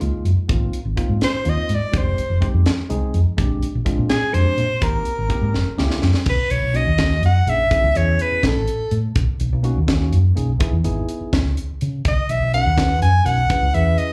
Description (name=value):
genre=electric jazz fusion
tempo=83 BPM (dotted quarters)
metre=6/8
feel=straight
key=Ab lydian, B major from 6.3 s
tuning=A4 = 440 Hz
part: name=bright tine electric piano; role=accompaniment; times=0.0-14.1 s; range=Ab3 to B4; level=-30 LUFS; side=equal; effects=slapback echo
part: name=hollow-body short-scale fingered electric bass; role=bass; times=0.0-13.9 s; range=F1 to C#3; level=-21 LUFS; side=equal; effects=none
part: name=tight funk drum kit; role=drums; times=0.0-14.1 s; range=crash cymbal, hi-hat, kick drum, snare drum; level=-24 LUFS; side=equal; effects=none
part: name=warm soprano saxophone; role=melody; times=1.2-9.0, 12.1-14.1 s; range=Ab4 to G#5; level=-23 LUFS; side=equal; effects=slapback echo, plate reverb
room=little or no reverb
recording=live gig heard through the venue's PA, club reverb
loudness=-19 LUFS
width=mono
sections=0.0-6.3 A section; 6.3-14.1 B section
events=drum fill 5.5-6.3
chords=0.5 Ab69; 1.9 Fm9; 3.4 Bb13; 4.8 Abmaj9; 5.5 Gb7b9; 6.3 Bmaj9; 7.7 Amaj7; 9.2 Bmaj9; 10.6 C#m9; 12.1 Bmaj9; 13.5 Amaj7 (rootless)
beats=| 0.49 1.21 | 1.94 2.66 | 3.38 4.10 | 4.82 5.54 | 6.26 6.99 | 7.71 8.43 | 9.16 9.88 | 10.60 11.33 | 12.05 12.78 | 13.50